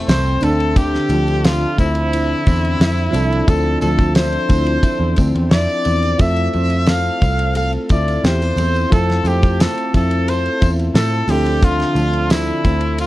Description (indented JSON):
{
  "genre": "indie pop, bedroom pop",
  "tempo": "88 BPM",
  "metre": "4/4",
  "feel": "straight",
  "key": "unclear",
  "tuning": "A4 = 442 Hz",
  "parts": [
    { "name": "fingerpicked steel-string acoustic guitar", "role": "accompaniment", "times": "0.0-13.1 s", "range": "F2 to A4", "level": "-24 LUFS", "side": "left 2 dB", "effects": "analog chorus, warbly pitch drift, plate reverb" },
    { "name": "soft electric-piano-like synth keys", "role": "accompaniment", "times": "0.0-13.1 s", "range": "D3 to E5", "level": "-24 LUFS", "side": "right 3 dB", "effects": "chorus, plate reverb" },
    { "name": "vintage muted picked electric bass", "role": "bass", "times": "0.0-13.1 s", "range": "C2 to A2", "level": "-18 LUFS", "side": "equal", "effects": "none" },
    { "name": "bright trumpet", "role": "melody", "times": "0.1-13.1 s", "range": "E4 to F5", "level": "-20 LUFS", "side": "left 1 dB", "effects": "wide subtle chorus" },
    { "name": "damped 70s drum kit", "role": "drums", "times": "0.1-13.1 s", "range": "hi-hat, kick drum, ride cymbal, snare drum", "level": "-16 LUFS", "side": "equal", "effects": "none" },
    { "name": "tambourine", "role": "percussion", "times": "0.1-13.1 s", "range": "none", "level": "-40 LUFS", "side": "right 2 dB", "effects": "none" }
  ],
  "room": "light reverb",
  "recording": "worn, warbling old tape, cassette tape, warbly pitch drift",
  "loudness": "-14 LUFS",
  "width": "side -16 dB against mid",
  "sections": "0.0-13.1 A section",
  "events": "none",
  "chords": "0.4 Dm9; 6.2 Fmaj7; 11.3 Dm9",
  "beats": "0.09 | 0.77 1.45 2.12 2.80 | 3.48 4.16 4.84 5.52 | 6.20 6.88 7.56 8.23 | 8.91 9.59 10.27 10.95 | 11.63 12.30 12.98"
}